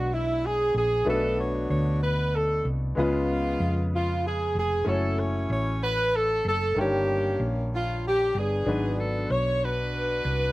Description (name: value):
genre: slow gospel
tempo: 63 BPM (dotted quarters)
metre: 6/8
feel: straight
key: F# minor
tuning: A4 = 440 Hz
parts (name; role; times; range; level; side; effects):
- warm saxophone section; melody; 0.0-10.5 s; G#3 to C#5; -26 LUFS; equal; none
- warm upright piano; accompaniment; 0.0-10.5 s; G2 to G5; -31 LUFS; left 2 dB; none
- hollow-body short-scale fingered electric bass; bass; 0.0-10.5 s; E#1 to E#2; -28 LUFS; equal; none
room: little or no reverb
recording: recorded outdoors, with no room sound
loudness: -23 LUFS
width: side -18 dB against mid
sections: 0.0-10.5 A section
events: none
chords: 0.0 G#m7b5; 1.1 Bm7; 3.0 C#7; 4.9 F#m7; 6.8 D#7/G; 8.7 G#m7b5